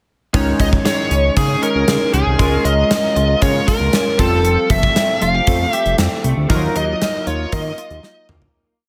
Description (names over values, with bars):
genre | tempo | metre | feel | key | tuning
1980s-style pop | 117 BPM | 4/4 | straight | unclear | A4 = 441 Hz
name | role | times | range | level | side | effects
chorused retro synth keys | accompaniment | 0.3-8.6 s | F3 to Db5 | -24 LUFS | equal | none
direct-recorded clean electric guitar | riff | 0.3-8.9 s | Eb3 to G4 | -28 LUFS | equal | ensemble chorus
fat analog bass | bass | 0.3-8.5 s | F1 to Eb3 | -21 LUFS | equal | none
gated 80s drum kit | drums | 0.3-8.5 s | hi-hat, kick drum, snare drum, toms | -21 LUFS | equal | none
biting lead guitar | melody | 0.6-8.3 s | Ab4 to F5 | -21 LUFS | equal | overdrive, tape echo
room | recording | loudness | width
light reverb, small room ambience | none | -16 LUFS | mono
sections
0.3-8.5 verse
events
fade-out 6.5-8.5; drum fill 8.0-8.5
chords
0.3 Dbsus2; 2.4 Bbm7/Db; 4.2 Fadd9; 6.5 Ebmadd9